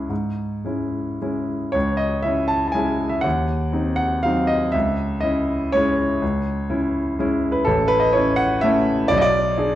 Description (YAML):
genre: classical, piano waltz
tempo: 107-132 BPM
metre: 3/4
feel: rubato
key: C# minor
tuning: A4 = 440 Hz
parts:
  - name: warm grand piano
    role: solo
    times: 0.0-9.8 s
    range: A1 to A5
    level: -18 LUFS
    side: equal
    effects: none
room: wet recital hall reverb, RT60 1.3 s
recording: dark, warm production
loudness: -18 LUFS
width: side -13 dB against mid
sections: 0.0-1.7 A section; 1.7-9.8 A section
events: none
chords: 0.0 C#m; 3.2 Cdim/Eb; 4.7 C#m; 7.7 A; 9.1 G#dim/B